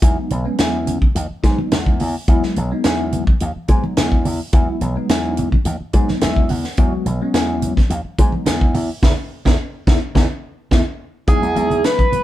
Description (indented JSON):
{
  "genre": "electric jazz fusion",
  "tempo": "107 BPM",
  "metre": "4/4",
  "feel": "straight",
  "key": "E major",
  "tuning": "A4 = 440 Hz",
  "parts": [
    { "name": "bell-like tine electric piano", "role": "accompaniment", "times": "0.0-12.2 s", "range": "F#3 to F#5", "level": "-24 LUFS", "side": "left 1 dB", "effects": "fast stereo tremolo, phaser" },
    { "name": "slap bass with an envelope filter", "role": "bass", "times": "0.0-12.2 s", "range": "B1 to G#2", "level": "-21 LUFS", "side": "equal", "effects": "none" },
    { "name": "tight funk drum kit", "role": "drums", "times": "0.0-12.2 s", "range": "hi-hat, kick drum, snare drum", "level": "-16 LUFS", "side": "equal", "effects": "none" },
    { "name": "congas", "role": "percussion", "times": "0.3-12.2 s", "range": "none", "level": "-25 LUFS", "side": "right 2 dB", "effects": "none" },
    { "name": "overdriven synth lead", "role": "melody", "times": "11.3-12.2 s", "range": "G#4 to B4", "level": "-17 LUFS", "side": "right 1 dB", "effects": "distortion, chorus, phaser" }
  ],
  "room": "light reverb",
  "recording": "band playing live in one room",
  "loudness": "-15 LUFS",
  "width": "side -14 dB against mid",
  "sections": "0.0-11.3 A section",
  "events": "tine electric piano fill 5.9-6.8; band accent 9.0-11.3; drum fill 11.0",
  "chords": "0.0 Emaj9"
}